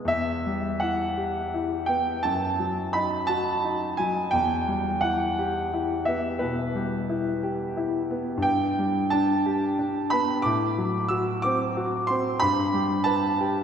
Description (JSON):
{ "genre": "classical, romantic nocturne for solo piano", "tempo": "53-62 BPM (dotted quarters)", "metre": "12/8", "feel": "rubato", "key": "E minor", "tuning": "A4 = 439 Hz", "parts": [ { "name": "clear concert grand piano", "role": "solo", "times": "0.0-13.6 s", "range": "E2 to E6", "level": "-23 LUFS", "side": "equal", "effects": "none" } ], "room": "wet church reverb, RT60 3.7 s", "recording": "none", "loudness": "-23 LUFS", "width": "side -8 dB against mid", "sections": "0.1-13.6 A section", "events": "none", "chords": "0.1 Em; 2.2 D#dim/F#; 4.3 Em; 8.4 G; 10.4 F#dim/A; 12.4 G" }